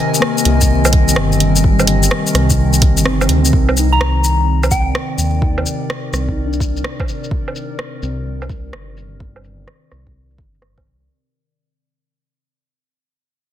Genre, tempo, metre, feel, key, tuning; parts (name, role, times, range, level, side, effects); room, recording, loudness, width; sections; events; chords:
future garage; 127 BPM; 4/4; swing 66% on 16ths; C minor; A4 = 440 Hz
muted felt-like synth keys; accompaniment; 0.0-11.1 s; G3 to Eb4; -24 LUFS; left 2 dB; chorus, phaser, sidechain pumping, low-pass filter, dub echo
warbly tape-like pad; sustained chords; 0.0-11.1 s; C3 to Ab5; -20 LUFS; left 1 dB; chorus, built-in reverb, sidechain pumping
drifting glass-harmonics texture; texture; 0.0-3.5 s; Bb4; -27 LUFS; equal; chorus, built-in reverb
garage drum kit; drums; 0.1-11.1 s; hi-hat, rim click, shaker, woodblock; -19 LUFS; equal; overdrive, low-pass filter on perc, low-pass filter on hats, low-pass filter on snare
dark detuned saw bass; bass; 0.5-11.1 s; G1 to Eb2; -16 LUFS; equal; sidechain pumping
electronic kick drum; drums; 0.6-10.8 s; -16 LUFS; equal; overdrive
soft synth bell; melody; 3.9-5.4 s; G5 to Bb5; -20 LUFS; left 1 dB; chorus, phaser, dub echo
moderate recital hall reverb, RT60 1.4 s; dense, heavily limited modern master; -13 LUFS; side -11 dB against mid
0.0-3.5 A section; 3.5-11.1 B section
kick drops out 3.1-3.5; fade-out 3.5-11.1; filter sweep on drum 3.5-11.1
0.0 Ab/C; 3.5 Cm9